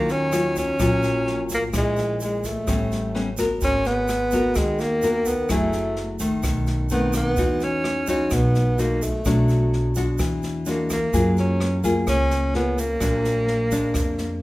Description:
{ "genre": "bossa nova", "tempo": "128 BPM", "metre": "4/4", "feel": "straight", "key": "Eb minor", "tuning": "A4 = 437 Hz", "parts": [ { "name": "breathy tenor saxophone", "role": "melody", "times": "0.0-14.4 s", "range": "Ab3 to Db4", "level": "-24 LUFS", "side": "equal", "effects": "none" }, { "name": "nylon-string guitar", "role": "accompaniment", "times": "0.0-14.4 s", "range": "A2 to Bb4", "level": "-24 LUFS", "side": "left 2 dB", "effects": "none" }, { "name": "upright bass", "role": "bass", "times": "0.0-14.4 s", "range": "Gb1 to Gb2", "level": "-26 LUFS", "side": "equal", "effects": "none" }, { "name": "open jazz drum kit", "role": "drums", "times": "0.1-14.2 s", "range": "kick drum, rim click, snare drum", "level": "-30 LUFS", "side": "equal", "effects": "none" }, { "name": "tube shaker", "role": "percussion", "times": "0.1-14.4 s", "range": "none", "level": "-38 LUFS", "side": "right 5 dB", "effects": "none" } ], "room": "moderate recital hall reverb, RT60 1.3 s", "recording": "recorded in a church or concert hall", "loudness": "-20 LUFS", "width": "side -18 dB against mid", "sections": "0.0-14.4 A section", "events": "none", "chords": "0.0 Ebm9; 1.7 Bbm7b5; 2.7 A9; 3.6 Abm9; 5.5 Gbm9; 6.4 B7b9; 7.4 Emaj9; 9.3 Bm7; 10.2 E9; 11.1 Gbmaj9; 13.0 Bb7b13", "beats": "0.32 0.79 1.26 | 1.73 2.20 2.67 3.14 | 3.61 4.08 4.55 5.02 | 5.49 5.96 6.43 6.90 | 7.37 7.84 8.31 8.78 | 9.25 9.72 10.19 10.66 | 11.13 11.60 12.07 12.54 | 13.01 13.48 13.95 14.42" }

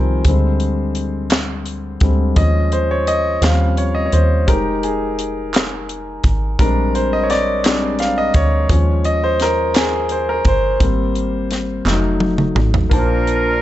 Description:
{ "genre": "slow gospel", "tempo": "57 BPM (dotted quarters)", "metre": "6/8", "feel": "straight", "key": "Ab major", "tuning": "A4 = 441 Hz", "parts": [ { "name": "clear concert grand piano", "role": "accompaniment", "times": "0.0-13.6 s", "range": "Bb2 to A5", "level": "-18 LUFS", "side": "left 1 dB", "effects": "none" }, { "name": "woody FM bass", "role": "bass", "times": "0.0-13.6 s", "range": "F1 to Eb2", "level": "-19 LUFS", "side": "equal", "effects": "none" }, { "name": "tight funk drum kit", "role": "drums", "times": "0.2-13.4 s", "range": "hi-hat, kick drum, snare drum, toms", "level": "-18 LUFS", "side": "equal", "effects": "none" }, { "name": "group handclap", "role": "percussion", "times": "1.3-12.2 s", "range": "none", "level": "-27 LUFS", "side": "right 5 dB", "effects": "none" }, { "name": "breathy alto saxophone", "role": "melody", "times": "12.9-13.6 s", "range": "Bb4", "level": "-22 LUFS", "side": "right 2 dB", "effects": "none" }, { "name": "mellow horn section", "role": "melody", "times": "12.9-13.6 s", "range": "D4 to Bb4", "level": "-20 LUFS", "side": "equal", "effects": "none" } ], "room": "light reverb, small room ambience", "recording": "dark, warm production, nothing above 8.0 kHz", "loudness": "-14 LUFS", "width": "side -14 dB against mid", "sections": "0.0-12.9 A section", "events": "grand piano solo 0.0-12.9; drum fill 11.9-12.9", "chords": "0.3 Abmaj7#11/D; 2.4 Eb7sus4; 3.4 Eb13; 4.5 Fm9; 6.6 Bb13; 8.7 Eb9sus4; 10.8 Abmaj7; 11.9 F7b9; 12.9 Bbmaj9", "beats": "| 0.26 1.31 | 2.37 3.42 | 4.48 5.53 | 6.59 7.64 | 8.69 9.75 | 10.80 11.86 | 12.91" }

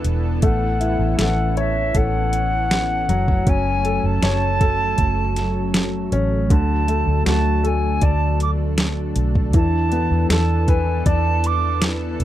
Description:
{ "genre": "pop ballad", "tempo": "79 BPM", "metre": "4/4", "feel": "straight", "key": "F# minor", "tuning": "A4 = 440 Hz", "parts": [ { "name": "clear baby grand piano", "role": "accompaniment", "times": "0.0-12.2 s", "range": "D3 to D5", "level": "-25 LUFS", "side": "left 4 dB", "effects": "none" }, { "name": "lush unison pad", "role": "sustained chords", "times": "0.0-12.2 s", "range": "E3 to A4", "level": "-26 LUFS", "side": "right 1 dB", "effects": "chorus" }, { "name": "vintage muted fingered electric bass", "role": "bass", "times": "0.0-12.2 s", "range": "E1 to E2", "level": "-21 LUFS", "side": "equal", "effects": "none" }, { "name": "smooth R&B drum kit", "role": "drums", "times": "0.0-12.2 s", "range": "hi-hat, kick drum, snare drum", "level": "-20 LUFS", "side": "equal", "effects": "none" }, { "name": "silver concert flute", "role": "melody", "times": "0.4-11.8 s", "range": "E5 to D6", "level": "-24 LUFS", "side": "right 2 dB", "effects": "none" } ], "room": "little or no reverb", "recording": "dry, close 1970s-style studio recording", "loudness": "-17 LUFS", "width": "side -12 dB against mid", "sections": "0.0-12.2 A section", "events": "none", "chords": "0.4 Aadd9; 3.1 F#m; 6.5 D; 9.5 E7sus4", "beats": "| 0.43 1.19 1.95 2.71 | 3.47 4.23 4.99 5.75 | 6.50 7.26 8.02 8.78 | 9.54 10.30 11.06 11.82" }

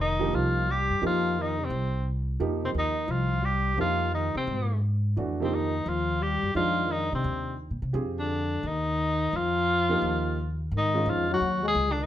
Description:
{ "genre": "jazz", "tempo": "173 BPM", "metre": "4/4", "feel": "swing 65% on 8ths", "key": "unclear", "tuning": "A4 = 440 Hz", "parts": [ { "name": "warm tenor saxophone", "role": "melody", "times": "0.0-12.1 s", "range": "C4 to G#4", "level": "-28 LUFS", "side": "equal", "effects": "none" }, { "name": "breathy trombone", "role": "second line", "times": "0.0-12.1 s", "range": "C3 to G#3", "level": "-32 LUFS", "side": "left 6 dB", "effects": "none" }, { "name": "upright bass", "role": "bass", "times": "0.0-12.1 s", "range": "F1 to C3", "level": "-30 LUFS", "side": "equal", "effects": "none" }, { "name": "warm upright piano", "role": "accompaniment", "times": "0.2-11.4 s", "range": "Eb3 to Ab4", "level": "-31 LUFS", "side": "right 4 dB", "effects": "none" } ], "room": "moderate club reverb, RT60 0.8 s", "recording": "none", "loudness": "-25 LUFS", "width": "side -12 dB against mid", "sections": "0.0-10.7 A section; 10.7-12.1 B section", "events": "break 10.4-10.7", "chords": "0.0 Fm11; 5.2 Bbsus4; 10.7 G#5", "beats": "0.33 0.67 | 1.02 1.36 1.71 2.06 | 2.40 2.75 3.10 3.44 | 3.79 4.13 4.48 4.83 | 5.17 5.52 5.87 6.21 | 6.56 6.91 7.26 7.60 | 7.95 8.30 8.64 8.99 | 9.34 9.68 10.03 10.38 | 10.72 11.07 11.41 11.76" }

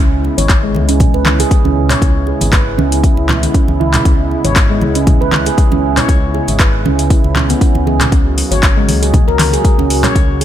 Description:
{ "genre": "afro house", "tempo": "118 BPM", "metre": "4/4", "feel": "swing 55% on 16ths", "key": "C# dorian", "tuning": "A4 = 440 Hz", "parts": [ { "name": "warm analog pad", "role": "sustained chords", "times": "0.0-10.4 s", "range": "C#3 to F#4", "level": "-21 LUFS", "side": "left 1 dB", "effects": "wide subtle chorus, sidechain pumping" }, { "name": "handpan", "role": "arpeggios", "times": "0.0-10.4 s", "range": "G#3 to C#5", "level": "-17 LUFS", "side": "right 3 dB", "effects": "sidechain pumping, low-pass filter, digital delay" }, { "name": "smooth gliding synth bass", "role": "bass", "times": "0.0-10.4 s", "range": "G#1 to C#2", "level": "-17 LUFS", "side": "left 1 dB", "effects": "tube saturation, sidechain pumping" }, { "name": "congas", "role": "percussion", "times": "0.2-10.4 s", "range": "none", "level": "-20 LUFS", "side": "right 2 dB", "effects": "none" }, { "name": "afro-pop drum kit", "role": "drums", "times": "0.4-10.4 s", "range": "handclaps, hi-hat, toms", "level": "-18 LUFS", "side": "left 2 dB", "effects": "overdrive" }, { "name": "electronic kick drum", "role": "drums", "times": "0.5-10.3 s", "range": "none", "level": "-11 LUFS", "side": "equal", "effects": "none" } ], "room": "digital ambience", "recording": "none", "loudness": "-10 LUFS", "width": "side -11 dB against mid", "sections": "0.0-10.4 A section", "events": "filter sweep on handpan 0.0-10.4", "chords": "0.0 C#m7; 8.1 F#", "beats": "0.49 1.00 1.51 | 2.02 2.53 3.04 3.54 | 4.05 4.56 5.07 5.58 | 6.09 6.60 7.11 7.61 | 8.12 8.63 9.14 9.65 | 10.15" }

